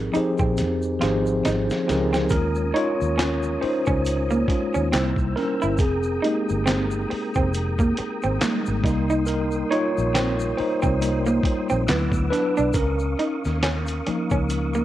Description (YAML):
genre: R&B, neo-soul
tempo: 69 BPM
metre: 4/4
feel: swing 59% on 16ths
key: unclear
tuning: A4 = 440 Hz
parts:
  - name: tine electric piano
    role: accompaniment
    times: 0.0-14.8 s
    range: F3 to Db5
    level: -24 LUFS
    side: equal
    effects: medium stereo tremolo
  - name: vintage muted fingered electric bass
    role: bass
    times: 0.0-14.8 s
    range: F1 to F2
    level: -26 LUFS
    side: equal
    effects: none
  - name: electric guitar through a small old amp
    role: second line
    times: 0.1-14.8 s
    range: Bb3 to F4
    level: -26 LUFS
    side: right 2 dB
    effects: none
  - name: dusty soul sampler-style drum kit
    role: drums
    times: 0.1-14.7 s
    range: handclaps, hi-hat, kick drum, snare drum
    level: -26 LUFS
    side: equal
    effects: none
  - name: tube shaker and finger snaps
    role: percussion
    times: 0.1-14.8 s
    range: none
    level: -39 LUFS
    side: left 5 dB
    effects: none
  - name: tonewheel organ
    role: sustained chords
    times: 2.3-14.8 s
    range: Db4 to E6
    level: -33 LUFS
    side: equal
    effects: overdrive, chorus vibrato, fast rotary speaker
room: light reverb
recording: worn, warbling old tape, cassette tape, warbly pitch drift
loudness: -20 LUFS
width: side -13 dB against mid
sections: 0.0-2.3 A section; 2.3-14.8 B section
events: drum fill 0.6-2.3; tine electric piano solo 2.3-14.8; kick muted 14.5-14.8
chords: 0.0 Fm11; 2.3 Eb7sus4; 4.9 C7; 5.8 Fm11; 8.8 Cm7; 11.9 D69; 12.7 Db69